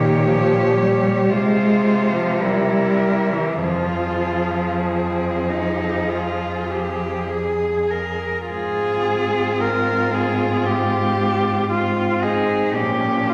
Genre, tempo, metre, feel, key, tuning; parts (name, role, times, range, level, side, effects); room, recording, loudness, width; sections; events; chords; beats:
classical, lyrical piece for cello ensemble; 47-59 BPM; 4/4; rubato; F minor; A4 = 440 Hz
warm cello; melody; 0.0-13.3 s; F4 to Db5; -26 LUFS; equal
rich cello; second line; 0.0-13.3 s; C4 to Bb4; -26 LUFS; equal
warm cello; accompaniment; 0.0-13.3 s; Eb3 to C4; -24 LUFS; equal
rich cello; bass; 0.0-13.3 s; F2 to C3; -27 LUFS; equal
wet scoring stage reverb, RT60 1.6 s; -20 LUFS; mono
0.0-8.5 A section; 8.5-13.3 B section
0.0 Gdim/Bb; 1.3 Fm/C; 2.4 C7; 3.6 Fm; 8.5 Fm/Ab; 12.8 Bbm
0.26 1.30 2.41 | 3.62 4.88 6.10 7.29 | 8.48 9.61 10.67 11.72 | 12.76